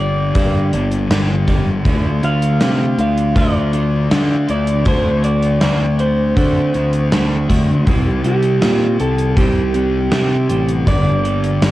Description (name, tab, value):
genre	rock, shoegaze and dream pop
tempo	80 BPM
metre	4/4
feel	straight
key	unclear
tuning	A4 = 436 Hz
part	electric guitar through a small old amp	melody	0.0-11.7 s	G4 to F5	-21 LUFS	right 2 dB	cassette tape, tape echo
part	crunchy overdriven guitar	riff	0.0-11.7 s	G2 to G4	-25 LUFS	right 6 dB	reverse reverb
part	thick fuzz guitar	riff	0.0-11.7 s	G2 to D4	-21 LUFS	left 4 dB	distortion, wide subtle chorus
part	picked electric bass	bass	0.0-11.7 s	G1 to D3	-17 LUFS	equal	none
part	gated 80s drum kit	drums	0.3-11.7 s	hi-hat, kick drum, snare drum	-17 LUFS	equal	cassette tape
room	small room ambience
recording	home recording on cassette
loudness	-13 LUFS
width	side -16 dB against mid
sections	0.0-11.7 A section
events	none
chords	0.0 Gm; 1.9 Dm; 4.9 D7; 7.9 Cm; 10.9 Gm